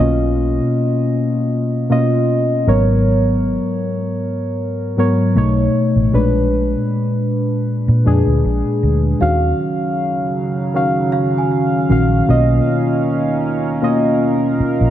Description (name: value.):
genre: contemporary R&B.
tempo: 78 BPM.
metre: 4/4.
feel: swing 54% on 16ths.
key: Eb minor.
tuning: A4 = 440 Hz.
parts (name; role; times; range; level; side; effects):
muted felt-like synth keys; accompaniment; 0.0-14.9 s; Ab2 to F5; -16 LUFS; left 1 dB; chorus.
vintage muted fingered electric bass; bass; 0.0-14.9 s; Ab1 to Bb2; -16 LUFS; equal; none.
chorused pulse-width pad; sustained chords; 9.2-14.9 s; Db3 to F5; -21 LUFS; right 4 dB; none.
worn celesta; texture; 9.2-12.9 s; F5 to Ab5; -28 LUFS; right 6 dB; none.
room: light reverb.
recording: none.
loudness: -14 LUFS.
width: side -11 dB against mid.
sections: 0.0-9.2 A section; 9.2-14.9 B section.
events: none.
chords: 0.0 Bmaj9#11; 2.7 Abm11; 5.4 B9; 6.1 Bb7b9; 9.2 Ebm9; 12.3 Bmaj9#11.